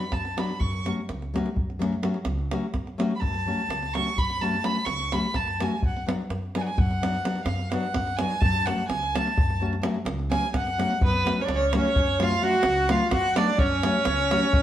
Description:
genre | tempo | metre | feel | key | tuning
balkan folk, Balkan wedding band | 254 BPM (eighths) | 11/8 | straight | F# harmonic minor | A4 = 443 Hz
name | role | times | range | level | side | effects
warm violin | melody | 0.0-14.6 s | B4 to C#6 | -27 LUFS | right 1 dB | none
nylon-string guitar | accompaniment | 0.0-14.4 s | F#3 to F#4 | -29 LUFS | left 3 dB | none
davul | percussion | 0.0-14.6 s | none | -28 LUFS | right 1 dB | none
upright bass | bass | 0.1-14.6 s | C#2 to F#2 | -31 LUFS | equal | none
accordion | second line | 11.0-14.6 s | B3 to F#4 | -26 LUFS | right 2 dB | none
room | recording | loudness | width
wet stone room reverb, RT60 1.0 s | band playing live in one room | -23 LUFS | side -12 dB against mid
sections
0.0-11.0 A section; 11.0-14.6 B section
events
violin solo 0.0-11.0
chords
0.0 Bm/F#; 0.6 F#m; 5.8 Bm/F#; 8.4 F#m

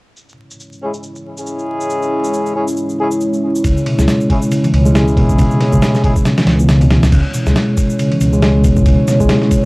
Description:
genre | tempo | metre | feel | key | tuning
breakbeat, breaks | 138 BPM | 4/4 | swing 57% on 16ths | C# minor | A4 = 440 Hz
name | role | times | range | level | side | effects
dark analog pad | sustained chords | 0.9-9.7 s | G#3 to C#5 | -20 LUFS | equal | chorus, phaser, vintage 12-bit sampler grit, sidechain pumping
shaker | drums | 0.2-9.6 s | none | -33 LUFS | equal | low-pass filter on perc, low-pass filter on room
mellow horn section | stabs | 0.8-6.1 s | G#3 to G#4 | -20 LUFS | left 1 dB | low-pass filter, analog delay
mellow reed electric piano | riff | 3.6-9.7 s | B2 to B3 | -13 LUFS | equal | fast tremolo, tube saturation, vintage 12-bit sampler grit, analog delay
dark detuned saw bass | bass | 3.6-9.3 s | C#2 | -15 LUFS | equal | none
dusty soul sampler-style drum kit | drums | 3.6-9.6 s | crash cymbal, kick drum, ride cymbal, snare drum | -16 LUFS | equal | none
room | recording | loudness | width
digital ambience | dry, gritty hardware recording, vinyl crackle | -11 LUFS | side -23 dB against mid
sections
0.2-7.1 A section; 7.1-9.7 B section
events
none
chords
0.2 C#m

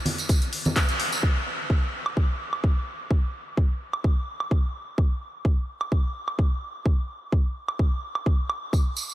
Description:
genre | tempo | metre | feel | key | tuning
house | 128 BPM | 4/4 | swing 54% on 16ths | none | none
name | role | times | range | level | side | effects
punchy analog drum machine | drums | 0.1-8.6 s | handclaps, hi-hat, woodblock | -31 LUFS | right 1 dB | none
congas and tambourine | percussion | 0.1-1.2, 8.7-9.1 s | none | -30 LUFS | right 1 dB | none
electronic kick drum | drums | 0.3-8.8 s | none | -22 LUFS | equal | none
room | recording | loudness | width
light reverb | none | -23 LUFS | side -15 dB against mid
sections
0.0-1.2 A section; 1.2-9.1 B section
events
band accent 0.8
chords
none

